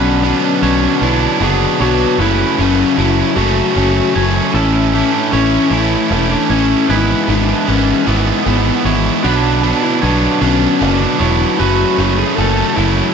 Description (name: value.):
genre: rock.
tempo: 51 BPM (dotted quarters).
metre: 6/8.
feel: straight.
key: unclear.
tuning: A4 = 440 Hz.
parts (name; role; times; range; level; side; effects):
lead guitar through a small cranked amp; melody; 0.0-13.1 s; B3 to A4; -18 LUFS; left 4 dB; overdrive, digital delay.
pedal steel guitar; sustained chords; 0.0-13.1 s; D3 to A5; -30 LUFS; right 1 dB; none.
electric guitar through a small old amp; arpeggios; 0.0-4.5 s; B2 to F#4; -26 LUFS; left 2 dB; none.
twangy electric guitar; arpeggios; 0.0-12.4 s; A4 to C#5; -25 LUFS; right 6 dB; digital delay.
cranked stack guitar; riff; 0.0-13.1 s; F#2 to E4; -17 LUFS; right 14 dB; overdrive.
overdriven semi-hollow guitar; riff; 0.0-13.1 s; F#2 to E4; -18 LUFS; left 12 dB; none.
overdriven picked electric bass; bass; 0.0-13.0 s; E1 to B1; -17 LUFS; right 1 dB; none.
room: moderate large studio reverb, RT60 1.2 s.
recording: none.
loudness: -11 LUFS.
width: side -6 dB against mid.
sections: 0.0-13.1 A section.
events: none.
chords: 0.0 Bmadd9; 2.2 F#m7; 4.5 A; 6.9 E/G#; 9.2 Bmadd9; 11.6 F#m7.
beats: 1.02 | 2.20 3.37 | 4.54 5.72 | 6.89 8.07 | 9.24 10.42 | 11.59 12.77.